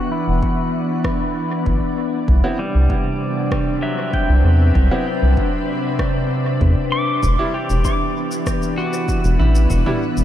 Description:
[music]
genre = ambient dub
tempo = 97 BPM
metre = 4/4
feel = straight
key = E minor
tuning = A4 = 440 Hz
[part]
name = soft additive organ-like pad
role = sustained chords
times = 0.0-10.2 s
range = C3 to F#5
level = -21 LUFS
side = left 1 dB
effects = ensemble chorus, built-in reverb
[part]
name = pedal steel guitar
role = arpeggios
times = 0.0-10.2 s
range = F#3 to D6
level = -25 LUFS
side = left 1 dB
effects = low-pass filter, tape echo
[part]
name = round analog bass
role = bass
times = 0.3-10.2 s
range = E1 to E2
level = -14 LUFS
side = equal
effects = none
[part]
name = electronic kick drum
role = drums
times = 0.4-9.8 s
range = none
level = -23 LUFS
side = equal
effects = overdrive, studio ambience
[part]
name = organic electronic drum kit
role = drums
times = 1.0-10.2 s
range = rim click, shaker, toms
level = -32 LUFS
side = equal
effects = overdrive, studio ambience, dub echo
[part]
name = clear upright piano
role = stabs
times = 2.4-10.0 s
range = G3 to E4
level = -28 LUFS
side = right 2 dB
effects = dub echo
[sound]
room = moderate cathedral reverb, RT60 6.4 s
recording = dreamy mix soaked in reverb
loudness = -16 LUFS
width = side -11 dB against mid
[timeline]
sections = 0.0-10.2 A section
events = filter sweep on pedal steel guitar 0.0-10.2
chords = 0.0 E7(no3); 2.3 Cmaj7; 7.2 Em7

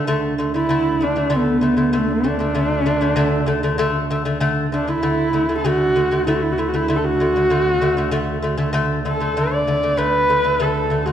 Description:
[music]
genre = mongolian traditional, Mongolian folk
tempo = 97 BPM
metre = 4/4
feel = straight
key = D gong mode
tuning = A4 = 438 Hz
[part]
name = lute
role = arpeggios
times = 0.0-11.1 s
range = D3 to A3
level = -20 LUFS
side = equal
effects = none
[part]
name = rich double bass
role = drone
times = 0.1-11.1 s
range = D2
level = -28 LUFS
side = equal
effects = none
[part]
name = dark horsehead fiddle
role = melody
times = 0.6-11.1 s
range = A3 to D5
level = -19 LUFS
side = right 1 dB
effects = none
[sound]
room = wet scoring stage reverb, RT60 1.5 s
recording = none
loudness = -16 LUFS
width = side -10 dB against mid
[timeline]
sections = 0.1-11.1 A section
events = none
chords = 0.1 D5

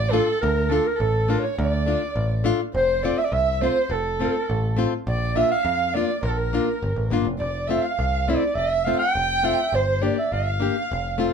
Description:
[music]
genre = klezmer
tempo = 103 BPM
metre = 2/4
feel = straight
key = F major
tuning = A4 = 440 Hz
[part]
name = warm clarinet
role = melody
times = 0.0-11.3 s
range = A4 to G5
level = -25 LUFS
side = right 2 dB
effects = none
[part]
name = dark violin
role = second line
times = 0.0-11.3 s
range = A4 to G5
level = -27 LUFS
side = right 3 dB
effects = none
[part]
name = picked electric bass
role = bass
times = 0.0-11.3 s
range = F1 to F2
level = -26 LUFS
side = equal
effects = none
[part]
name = nylon-string guitar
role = accompaniment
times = 0.1-11.3 s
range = A3 to G4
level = -24 LUFS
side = left 5 dB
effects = none
[sound]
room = wet small room ambience, RT60 0.5 s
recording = band playing live in one room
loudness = -20 LUFS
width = side -6 dB against mid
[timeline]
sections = 0.0-2.7 A section; 2.7-11.3 B section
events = none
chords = 0.0 Dm; 2.7 F; 5.1 Bb; 7.4 F; 9.7 Gm

